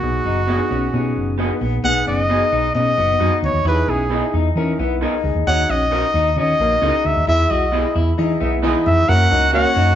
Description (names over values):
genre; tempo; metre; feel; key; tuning
soul; 132 BPM; 4/4; straight; unclear; A4 = 439 Hz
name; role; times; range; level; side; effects
clear trumpet; melody; 0.0-10.0 s; F#4 to F#5; -18 LUFS; equal; none
warm concert grand piano; accompaniment; 0.0-9.9 s; E3 to E5; -24 LUFS; left 2 dB; none
hollow-body short-scale fingered electric bass; bass; 0.0-9.9 s; F#1 to E3; -20 LUFS; equal; none
electric guitar through a small old amp; riff; 0.3-9.9 s; A#3 to F#4; -24 LUFS; left 4 dB; none
electric guitar through a small old amp; stabs; 0.5-9.6 s; B3 to D#5; -26 LUFS; right 5 dB; none
mellow horn section; second line; 8.4-10.0 s; G#3 to F#4; -25 LUFS; right 2 dB; none
room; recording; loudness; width
moderate large studio reverb, RT60 1.1 s; band playing live in one room, nothing above 7.7 kHz; -15 LUFS; side -10 dB against mid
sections
0.0-1.8 A section; 1.8-9.1 B section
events
band accent 7.3-9.1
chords
0.0 B6; 3.7 Emaj7; 5.5 D#m7; 7.3 Emaj7; 9.1 F#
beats
| 0.03 0.48 0.94 1.39 | 1.84 2.30 2.75 3.21 | 3.66 4.11 4.56 5.02 | 5.47 5.92 6.37 6.83 | 7.28 7.73 8.18 8.63 | 9.09 9.54